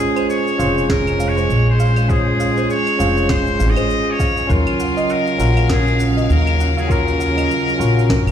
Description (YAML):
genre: sunset chillout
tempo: 100 BPM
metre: 4/4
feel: swing 58% on 16ths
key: Bb minor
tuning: A4 = 440 Hz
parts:
  - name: trumpet with straight mute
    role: melody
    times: 0.0-8.3 s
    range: F4 to Eb5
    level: -21 LUFS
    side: left 2 dB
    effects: digital delay
  - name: tine electric piano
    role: accompaniment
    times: 0.0-8.3 s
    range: Gb3 to C5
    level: -21 LUFS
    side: moving between left 6 dB and right 4 dB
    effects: auto-pan, digital delay
  - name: bright studio string section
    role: sustained chords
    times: 0.0-8.3 s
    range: Db3 to F5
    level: -26 LUFS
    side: equal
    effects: none
  - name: soft round pluck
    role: arpeggios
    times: 0.0-8.3 s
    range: Ab4 to Gb5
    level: -26 LUFS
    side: right 3 dB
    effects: lush chorus, digital delay
  - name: electronic claves, shaker and snare drum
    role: drums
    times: 0.2-8.3 s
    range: none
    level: -28 LUFS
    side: right 1 dB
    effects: overdrive
  - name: upright bass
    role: bass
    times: 0.6-8.3 s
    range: F1 to Gb2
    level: -17 LUFS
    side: equal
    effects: none
  - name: electronic kick drum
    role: drums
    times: 0.9-8.2 s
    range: none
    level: -20 LUFS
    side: equal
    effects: overdrive
room: light reverb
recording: played on a big sound system in a bare room, large studio reverb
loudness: -14 LUFS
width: side -9 dB against mid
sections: 0.0-8.3 A section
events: filter sweep on tine electric piano 0.0-8.3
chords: 0.0 Bbm9; 4.5 Ebm9